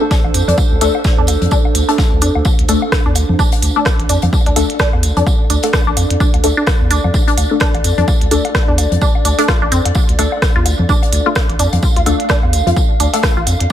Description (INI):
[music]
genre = minimal techno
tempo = 128 BPM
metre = 4/4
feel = swing 58% on 16ths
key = D minor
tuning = A4 = 439 Hz
[part]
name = filtered dub chord stab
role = stabs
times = 0.0-13.2 s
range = A3 to A4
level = -20 LUFS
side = left 5 dB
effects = phaser, lush chorus, ping-pong delay
[part]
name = warbly tape-like pad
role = texture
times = 0.0-13.7 s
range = D4 to F5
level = -22 LUFS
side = right 2 dB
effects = chorus, built-in reverb, sidechain pumping
[part]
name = resonant blip pluck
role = riff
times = 0.1-13.4 s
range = C4 to F4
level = -20 LUFS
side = equal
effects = phaser, cassette tape, sidechain pumping, tape echo
[part]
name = electronic kick drum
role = drums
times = 0.1-13.3 s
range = none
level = -15 LUFS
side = equal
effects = none
[part]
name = loose indie drum kit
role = drums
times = 0.1-13.7 s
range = hi-hat, snare drum, tambourine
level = -26 LUFS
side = equal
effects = high-pass filter on hats, high-pass filter on snare, high-pass filter on perc, high-pass filter on room
[part]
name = saturated sub bass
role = bass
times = 0.2-13.7 s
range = A1 to F2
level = -16 LUFS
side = equal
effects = sidechain pumping
[part]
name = woodblock and congas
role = percussion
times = 0.2-13.6 s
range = none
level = -24 LUFS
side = left 3 dB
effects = ping-pong delay
[part]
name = minimal click drum kit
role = drums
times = 0.3-13.7 s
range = hi-hat, rim click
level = -20 LUFS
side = right 1 dB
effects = none
[sound]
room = light reverb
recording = none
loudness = -11 LUFS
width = side -11 dB against mid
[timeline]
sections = 0.0-13.7 A section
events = none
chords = 0.0 D5